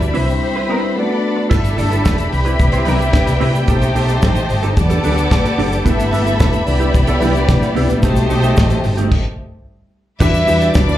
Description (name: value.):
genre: disco.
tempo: 110 BPM.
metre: 4/4.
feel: straight.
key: E minor.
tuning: A4 = 441 Hz.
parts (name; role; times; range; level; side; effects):
dark studio violin section; second line; 0.0-11.0 s; G3 to E5; -21 LUFS; left 1 dB; plate reverb, slapback echo.
mellow tine electric piano; accompaniment; 0.0-1.5, 5.8-11.0 s; G3 to C5; -21 LUFS; left 3 dB; slow stereo tremolo, slapback echo.
semi-hollow electric guitar; accompaniment; 0.0-10.9 s; A3 to D5; -22 LUFS; right 5 dB; ensemble chorus, plate reverb, slapback echo.
clear studio string section; sustained chords; 0.0-11.0 s; G3 to D6; -24 LUFS; left 1 dB; plate reverb.
hollow-body short-scale fingered electric bass; bass; 0.0-11.0 s; E1 to C3; -17 LUFS; equal; none.
tube shaker; percussion; 0.0-11.0 s; none; -42 LUFS; right 4 dB; none.
damped 70s drum kit; drums; 0.1-10.9 s; crash cymbal, hi-hat, kick drum, snare drum; -17 LUFS; equal; none.
congas; percussion; 1.5-8.7 s; none; -26 LUFS; left 2 dB; slapback echo.
room: light reverb.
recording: live gig heard through the venue's PA, club reverb.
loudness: -13 LUFS.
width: side -13 dB against mid.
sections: 0.0-1.5 A section; 1.5-10.2 B section.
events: stop 9.1-10.2.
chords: 0.2 Cmaj7; 1.0 Bm7; 1.5 G69; 2.3 Cmaj7; 3.7 B7b9b13; 4.8 Em11; 5.9 G69; 6.7 Cmaj7; 8.0 B7b9b13; 10.2 Em7.